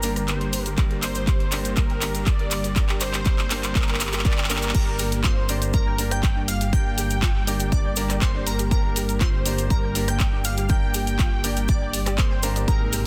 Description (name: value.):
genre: progressive house.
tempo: 121 BPM.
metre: 4/4.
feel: straight.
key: G minor.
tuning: A4 = 440 Hz.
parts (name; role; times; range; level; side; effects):
unison lead; melody; 0.0-13.1 s; Bb4 to G5; -34 LUFS; equal; digital delay.
airy breathy pad; sustained chords; 0.0-13.1 s; C3 to G4; -34 LUFS; equal; chorus, sidechain pumping.
clear baby grand piano; stabs; 0.0-13.1 s; Bb3 to Bb4; -35 LUFS; equal; sidechain pumping, digital delay.
round analog bass; bass; 0.0-13.1 s; G1 to Ab1; -30 LUFS; equal; tube saturation, sidechain pumping.
pop drum kit; drums; 0.0-13.0 s; crash cymbal, handclaps, hi-hat, rim click; -31 LUFS; equal; none.
cabasa; percussion; 0.0-13.0 s; none; -34 LUFS; equal; none.
soft round pluck; arpeggios; 0.4-13.0 s; G3 to G6; -40 LUFS; equal; ensemble chorus, sidechain pumping, digital delay.
electronic kick drum; drums; 0.8-12.8 s; none; -24 LUFS; equal; none.
glassy wavetable pluck; second line; 4.7-13.0 s; Bb5 to G6; -39 LUFS; equal; chorus, sidechain pumping, digital delay.
room: light reverb, digital ambience.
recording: dense, heavily limited modern master.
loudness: -23 LUFS.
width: mono.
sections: 0.0-4.7 A section; 4.7-13.1 B section.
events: build-up 0.0-4.7; drum fill 0.0-4.7; drop 4.7-13.1.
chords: 0.0 Gm.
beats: 0.28 | 0.78 1.27 1.77 2.27 | 2.76 3.26 3.75 4.25 | 4.75 5.24 5.74 6.23 | 6.73 7.22 7.72 8.22 | 8.71 9.21 9.70 10.20 | 10.70 11.19 11.69 12.18 | 12.68.